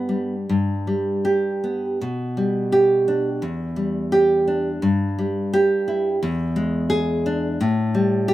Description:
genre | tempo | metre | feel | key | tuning
romantic piece for solo classical guitar | 69-90 BPM | 2/4 | rubato | G major | A4 = 442 Hz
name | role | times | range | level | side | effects
nylon-string guitar | solo | 0.0-8.3 s | E2 to G#4 | -19 LUFS | equal | none
room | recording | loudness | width
little or no reverb | recorded outdoors, with no room sound | -19 LUFS | side -15 dB against mid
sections
0.5-8.3 A section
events
none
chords
0.5 G; 2.0 G/B; 3.4 Em7; 4.8 Em/G; 6.2 E7; 7.6 A7(no3)

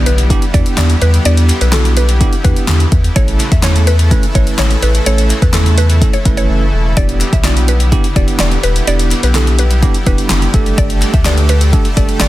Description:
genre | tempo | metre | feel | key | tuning
dance-pop | 126 BPM | 4/4 | straight | E dorian | A4 = 435 Hz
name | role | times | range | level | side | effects
mallet-like synth pluck | melody | 0.0-12.3 s | A4 to E5 | -21 LUFS | equal | chorus, sidechain pumping, dub echo
bell-like tine electric piano | accompaniment | 0.0-12.3 s | A3 to B4 | -20 LUFS | right 5 dB | sidechain pumping
supersaw pad | sustained chords | 0.0-12.3 s | C#3 to A4 | -21 LUFS | equal | sidechain pumping
saturated sub bass | bass | 0.0-12.3 s | E1 to E2 | -12 LUFS | equal | sidechain pumping
impact | sound effects | 0.5-1.3 s | none | barely audible | none | none
deep house drum kit | drums | 0.1-12.3 s | handclaps, hi-hat, kick drum, snare drum | -14 LUFS | equal | none
group handclap | percussion | 0.8-12.3 s | none | -28 LUFS | left 3 dB | none
room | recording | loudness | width
little or no reverb | dense, heavily limited modern master | -9 LUFS | side -16 dB against mid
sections
0.0-12.3 A section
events
impact 0.0-1.3; silent gap 6.5-7.0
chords
0.0 Em7; 3.2 A; 7.0 Em7; 10.5 Gsus2

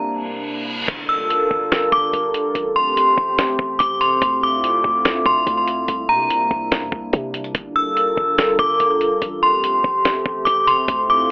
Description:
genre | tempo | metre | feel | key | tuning
hip hop, atmospheric cloud-rap | 144 BPM | 4/4 | half-time | G dorian | A4 = 439 Hz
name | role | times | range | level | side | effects
warbly tape-like pad | sustained chords | 0.0-11.3 s | C3 to Bb4 | -23 LUFS | equal | chorus, built-in reverb, sidechain pumping
reverse cymbal and impact | sound effects | 0.2-2.5 s | none | -29 LUFS | right 1 dB | none
warm 808-style bass | bass | 0.9-11.3 s | G1 to C3 | -28 LUFS | equal | none
lo-fi sampler-style drum kit | drums | 0.9-11.0 s | crash cymbal, hi-hat, kick drum, snare drum | -22 LUFS | equal | none
metallic FM bell | melody | 1.1-11.3 s | Bb5 to E6 | -17 LUFS | equal | chorus, digital delay
room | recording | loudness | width
wet booth ambience, RT60 0.3 s | telephone sound | -16 LUFS | side -26 dB against mid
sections
0.9-11.3 A section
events
break 0.0-0.9; reverse cymbal 0.2-0.9; impact 0.9-2.5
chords
0.0 C9; 0.9 Gm7; 2.5 Am7; 4.2 Dm9; 5.9 C9; 7.5 Gm7; 9.2 Am7

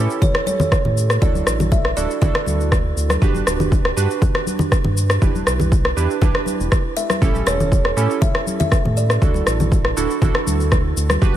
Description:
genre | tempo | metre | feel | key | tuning
afro house | 120 BPM | 4/4 | straight | unclear | A4 = 442 Hz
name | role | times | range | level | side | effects
kalimba | melody | 0.0-2.9, 7.0-9.9 s | B4 to E5 | -26 LUFS | right 1 dB | tape echo
warm analog keys | stabs | 0.0-11.4 s | C#4 to B4 | -24 LUFS | right 6 dB | chorus, sidechain pumping, digital delay
round analog bass | bass | 0.0-11.4 s | D1 to A2 | -21 LUFS | equal | sidechain pumping
electronic shaker and rim click | drums | 0.1-11.3 s | none | -23 LUFS | left 1 dB | none
electronic kick drum | drums | 0.2-11.3 s | none | -17 LUFS | equal | none
congas | percussion | 0.2-11.4 s | none | -24 LUFS | left 2 dB | none
room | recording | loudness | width
light reverb | none | -15 LUFS | side -12 dB against mid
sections
0.0-11.4 A section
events
none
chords
0.0 A7; 1.2 Dadd9; 3.2 Gmaj7; 5.2 Em7; 7.2 A7; 9.2 Dadd9

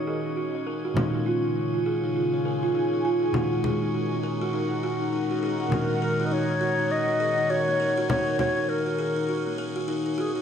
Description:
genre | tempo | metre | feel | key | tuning
organic downtempo | 101 BPM | 4/4 | swing 60% on 16ths | Eb minor | A4 = 441 Hz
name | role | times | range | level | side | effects
bell-like tine electric piano | accompaniment | 0.0-10.4 s | Bb2 to Gb4 | -31 LUFS | right 1 dB | fast stereo tremolo, digital delay
airy breathy pad | sustained chords | 0.0-10.4 s | Db3 to Ab5 | -32 LUFS | left 2 dB | chorus, phaser
buzzing kalimba | arpeggios | 0.0-10.4 s | Bb3 to Db5 | -27 LUFS | right 1 dB | low-pass filter, digital delay
drifting glass-harmonics texture | texture | 0.0-10.4 s | Db4 to Db5 | -37 LUFS | left 3 dB | chorus, built-in reverb
congas | drums | 1.0-8.5 s | none | -29 LUFS | left 2 dB | overdrive
breathy clarinet | melody | 5.7-10.3 s | Ab4 to Eb5 | -26 LUFS | left 1 dB | digital delay
room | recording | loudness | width
wet plate reverb, RT60 1.5 s | bright 1980s-style digital production | -23 LUFS | side -8 dB against mid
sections
0.0-10.4 A section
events
filter sweep on kalimba 0.0-10.4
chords
0.0 Ebm7; 1.0 Db; 3.3 Ebm7

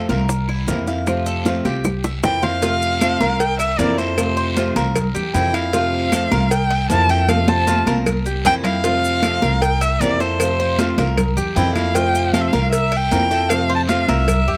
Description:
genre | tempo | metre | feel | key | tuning
latin, Cuban son and guajira | 154 BPM | 4/4 | straight | F major | A4 = 440 Hz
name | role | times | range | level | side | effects
nylon-string guitar | accompaniment | 0.0-14.3 s | C3 to F4 | -25 LUFS | equal | none
Cuban tres | arpeggios | 0.0-14.6 s | E4 to F5 | -28 LUFS | equal | slapback echo
upright bass | bass | 0.0-14.6 s | C2 to F2 | -24 LUFS | equal | none
bongos and cowbell | percussion | 0.1-14.5 s | none | -28 LUFS | equal | none
congas | percussion | 0.1-14.6 s | none | -26 LUFS | equal | none
guiro | percussion | 0.1-14.6 s | none | -36 LUFS | equal | slapback echo
maracas | percussion | 0.1-14.5 s | none | -35 LUFS | equal | none
claves | percussion | 0.5-14.5 s | none | -34 LUFS | equal | slapback echo
clear erhu | melody | 2.2-14.6 s | C5 to A5 | -22 LUFS | equal | none
room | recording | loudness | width
little or no reverb | recorded outdoors, with no room sound | -18 LUFS | mono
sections
0.0-2.6 A section; 2.6-14.6 B section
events
drum fill 1.8-2.6, 7.3-8.8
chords
0.3 C7; 1.1 F; 1.8 C7; 2.6 F; 3.4 C7; 4.2 F; 5.0 C7; 5.7 F; 6.5 C7; 7.3 F; 8.1 C7; 8.8 F; 9.6 C7; 10.4 F; 11.2 C7; 11.9 F; 12.7 C7; 13.5 F

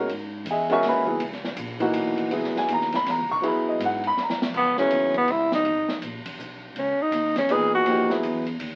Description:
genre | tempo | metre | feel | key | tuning
modal jazz | 162 BPM | 3/4 | swing 63% on 8ths | C# dorian | A4 = 439 Hz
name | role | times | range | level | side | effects
warm upright piano | accompaniment | 0.0-5.3, 7.5-8.4 s | A#2 to C#6 | -26 LUFS | equal | none
upright bass | bass | 0.0-8.8 s | G#1 to G#2 | -38 LUFS | equal | none
open jazz drum kit | drums | 0.1-8.7 s | crash cymbal, hi-hat, kick drum, ride cymbal, snare drum | -35 LUFS | equal | none
warm tenor saxophone | melody | 4.6-8.2 s | B3 to G#4 | -24 LUFS | equal | none
room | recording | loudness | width
moderate small room reverb, RT60 0.5 s | very old 78 rpm record, vinyl crackle | -24 LUFS | mono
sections
0.0-4.5 A section; 4.5-8.8 A section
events
drum fill 4.2-4.5; tenor saxophone solo 4.5-8.8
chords
0.1 C#m9; 2.3 F#sus4; 4.5 C#m9; 6.8 F#sus4/C#

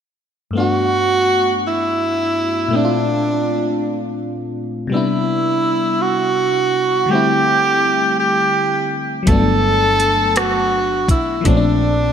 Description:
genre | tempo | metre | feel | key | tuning
slow six-eight R&B | 55 BPM (dotted quarters) | 6/8 | straight | G major | A4 = 440 Hz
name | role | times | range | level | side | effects
FM electric piano | accompaniment | 0.5-12.1 s | G2 to F#4 | -20 LUFS | left 3 dB | chorus
breathy tenor saxophone | melody | 0.6-12.1 s | D4 to A4 | -16 LUFS | right 2 dB | ping-pong delay
woody fretless electric bass | bass | 9.3-12.1 s | G1 to B1 | -20 LUFS | equal | none
smooth R&B drum kit | drums | 9.3-11.6 s | hi-hat, kick drum, rim click | -18 LUFS | equal | gated reverb
room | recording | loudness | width
wet lush hall reverb, RT60 2.5 s | bright 1980s-style digital production | -14 LUFS | side -8 dB against mid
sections
0.5-12.1 A section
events
none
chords
0.5 Gmaj9; 2.7 Bbmaj9; 4.9 Cmaj9; 7.1 D9sus4; 9.3 Gmaj9; 11.5 Bbmaj9

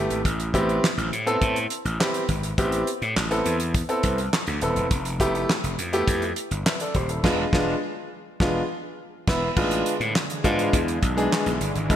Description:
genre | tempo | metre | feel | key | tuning
early-eighties boogie funk | 103 BPM | 4/4 | straight | A minor | A4 = 440 Hz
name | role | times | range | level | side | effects
clear concert grand piano | accompaniment | 0.0-12.0 s | G#3 to E5 | -25 LUFS | equal | none
gritty slap bass | bass | 0.0-12.0 s | D#1 to A2 | -26 LUFS | equal | overdrive
damped 70s drum kit | drums | 0.1-12.0 s | crash cymbal, handclaps, hi-hat, kick drum, snare drum | -26 LUFS | equal | none
lush unison pad | sustained chords | 9.6-12.0 s | D3 to G#3 | -31 LUFS | equal | chorus
room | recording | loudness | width
moderate lush hall reverb, RT60 1.7 s | bright 1980s-style digital production | -21 LUFS | side -10 dB against mid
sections
0.0-9.6 A section; 9.6-12.0 B section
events
band accent 7.2-9.6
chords
0.2 Am9; 4.9 Fmaj9#11; 7.2 E7b9

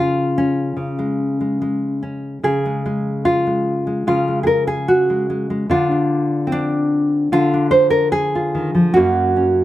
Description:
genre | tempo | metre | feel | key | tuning
folk, solo fingerstyle acoustic guitar | 73 BPM | 4/4 | straight | Db major | A4 = 440 Hz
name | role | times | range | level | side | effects
nylon-string guitar | solo | 0.0-9.6 s | Gb2 to C5 | -16 LUFS | equal | none
room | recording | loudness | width
light reverb | none | -16 LUFS | side -14 dB against mid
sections
0.0-2.4 A section; 2.4-9.6 A section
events
none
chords
0.0 Db; 5.7 Dm7b5; 8.9 Gb

